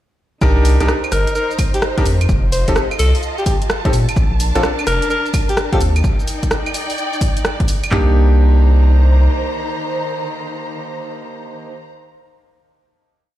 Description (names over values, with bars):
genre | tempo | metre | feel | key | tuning
UK garage, two-step garage | 128 BPM | 4/4 | swing 66% on 16ths | C dorian | A4 = 441 Hz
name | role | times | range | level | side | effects
bright concert grand piano | stabs | 0.4-11.7 s | Bb3 to Bb4 | -22 LUFS | equal | dub echo
saturated sub bass | bass | 0.4-9.3 s | F1 to Bb2 | -13 LUFS | equal | none
garage drum kit | drums | 0.4-7.9 s | claves, hi-hat, rim click, shaker | -23 LUFS | right 1 dB | studio ambience
punchy analog drum machine | drums | 0.4-8.1 s | handclaps, kick drum, toms | -17 LUFS | equal | studio ambience
warm studio string section | texture | 0.4-11.9 s | Eb3 to Bb5 | -25 LUFS | equal | sidechain pumping
breathy alto saxophone | melody | 1.1-5.8 s | G4 to C5 | -22 LUFS | left 1 dB | dub echo
room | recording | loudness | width
little or no reverb | played on a big sound system in a bare room, stone room reverb | -13 LUFS | side -13 dB against mid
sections
0.4-7.9 drop; 7.9-11.7 final chord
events
drop 0.4-7.9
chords
0.4 Cm7; 2.3 F7; 3.9 Bbmaj7; 5.8 Ebmaj7; 7.9 Cm7